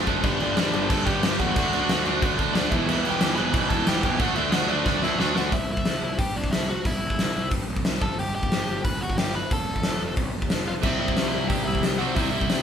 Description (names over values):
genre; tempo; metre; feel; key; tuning
punk rock; 181 BPM; 4/4; straight; unclear; A4 = 439 Hz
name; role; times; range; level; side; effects
cranked stack guitar; riff; 0.0-5.5, 10.8-12.6 s; E2 to D4; -26 LUFS; right 6 dB; overdrive
distorted electric guitar; riff; 0.0-5.5, 10.8-12.6 s; E2 to D4; -29 LUFS; left 7 dB; distortion
fuzz picked electric bass; bass; 0.0-12.6 s; E1 to G2; -32 LUFS; equal; overdrive
big rock drum kit; drums; 0.1-12.6 s; crash cymbal, hi-hat, kick drum, snare drum; -25 LUFS; equal; none
biting lead guitar; melody; 0.2-12.6 s; D4 to B5; -29 LUFS; equal; overdrive
room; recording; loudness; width
light reverb; band playing live in one room; -21 LUFS; side -8 dB against mid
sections
0.0-5.5 A section; 5.5-12.6 B section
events
drum fill 4.9-5.5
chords
0.2 G5; 1.6 D; 2.7 Em; 4.2 D; 5.5 C; 8.0 G; 9.5 F; 10.8 C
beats
| 0.25 0.57 0.90 1.23 | 1.56 1.89 2.22 2.55 | 2.88 3.21 3.54 3.87 | 4.20 4.53 4.86 5.19 | 5.52 5.86 6.19 6.52 | 6.85 7.18 7.51 7.85 | 8.18 8.51 8.84 9.18 | 9.51 9.84 10.17 10.51 | 10.84 11.17 11.51 11.84 | 12.17 12.50